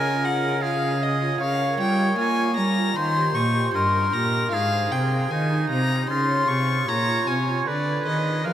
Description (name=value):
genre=classical, baroque-style sonata movement with continuo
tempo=77 BPM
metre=4/4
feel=straight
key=Ab major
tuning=A4 = 439 Hz
part: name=warm violin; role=melody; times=0.0-8.5 s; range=D5 to Db6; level=-25 LUFS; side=left 4 dB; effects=none
part: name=clear oboe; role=second line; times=0.0-8.5 s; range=Eb4 to Db5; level=-26 LUFS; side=right 3 dB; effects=none
part: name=pipe organ, sparkling flutes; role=accompaniment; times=0.0-8.5 s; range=G2 to Eb5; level=-29 LUFS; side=equal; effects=none
part: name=dark cello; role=bass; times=0.0-8.5 s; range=G2 to Bb3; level=-25 LUFS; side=right 1 dB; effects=none
room=wet huge ambient reverb, RT60 8.1 s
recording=in a vast, echoing space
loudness=-20 LUFS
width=side -11 dB against mid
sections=0.0-8.5 A section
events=none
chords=0.0 Db; 1.4 Bbm/Db; 3.0 Eb; 4.5 Ab; 6.1 Db; 7.7 Ddim7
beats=0.62 | 1.40 2.17 2.96 3.74 | 4.52 5.31 6.09 6.88 | 7.66 8.45